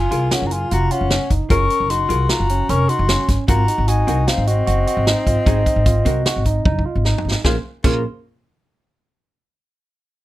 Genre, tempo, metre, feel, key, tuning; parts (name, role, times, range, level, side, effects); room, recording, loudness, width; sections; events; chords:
progressive instrumental, band music in an uneven meter; 151 BPM; 5/4; straight; Bb minor; A4 = 439 Hz
baroque flute; melody; 0.0-8.0 s; Bb4 to Db6; -22 LUFS; left 2 dB
breathy alto saxophone; second line; 0.0-8.0 s; C4 to Bb4; -26 LUFS; left 3 dB
barky tine electric piano; arpeggios; 0.0-8.0 s; Bb3 to Gb4; -26 LUFS; right 6 dB; overdrive
upright bass; bass; 0.0-8.0 s; F1 to C2; -19 LUFS; equal
vintage hollow-body jazz guitar; accompaniment; 0.1-8.0 s; C4 to C5; -25 LUFS; equal
vintage drum kit; drums; 0.1-7.9 s; crash cymbal, hi-hat, kick drum, snare drum, toms; -20 LUFS; equal
light reverb; -15 LUFS; side -15 dB against mid
0.0-7.5 A section; 7.5-9.4 B section
drum fill 6.7-7.5
0.0 Gbmaj7; 3.5 Ab7; 7.5 Bbm7